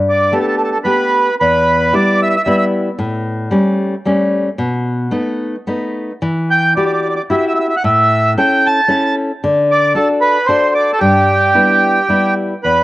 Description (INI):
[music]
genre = italian folk, Italian serenade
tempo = 112 BPM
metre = 3/4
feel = swing 55% on 8ths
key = G major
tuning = A4 = 439 Hz
[part]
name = nylon-string guitar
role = accompaniment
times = 0.0-12.8 s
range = E2 to A4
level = -15 LUFS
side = left 1 dB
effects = cassette tape
[part]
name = accordion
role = melody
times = 0.1-2.6, 6.5-12.8 s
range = G4 to A5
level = -13 LUFS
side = right 2 dB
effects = cassette tape
[sound]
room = moderate spring reverb, RT60 1.9 s, small room ambience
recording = home recording on cassette, nothing above 10.7 kHz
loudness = -12 LUFS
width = side -17 dB against mid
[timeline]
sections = 0.0-12.6 A section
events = none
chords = 0.0 Gadd9; 1.4 Em; 3.0 A7; 4.6 B7; 6.2 Emadd9; 7.8 A; 9.4 D; 11.0 G6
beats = 0.33 0.87 | 1.40 1.93 2.46 | 2.98 3.51 4.04 | 4.58 5.11 5.66 | 6.20 6.75 7.29 | 7.82 8.36 8.89 | 9.41 9.94 10.47 | 11.00 11.54 12.09 | 12.63